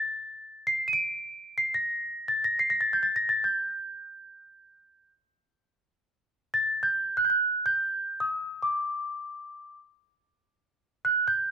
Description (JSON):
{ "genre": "Arabic maqam ensemble", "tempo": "free time", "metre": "none", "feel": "none", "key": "unclear", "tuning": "A4 = 440 Hz", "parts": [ { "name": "celesta", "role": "solo", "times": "0.0-11.5 s", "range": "D6 to Eb7+25c", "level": "-25 LUFS", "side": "right 1 dB", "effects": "none" } ], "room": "moderate recital hall reverb, RT60 1.5 s", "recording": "none", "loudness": "-25 LUFS", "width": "side -6 dB against mid", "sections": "0.0-11.5 A section", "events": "none", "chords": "none" }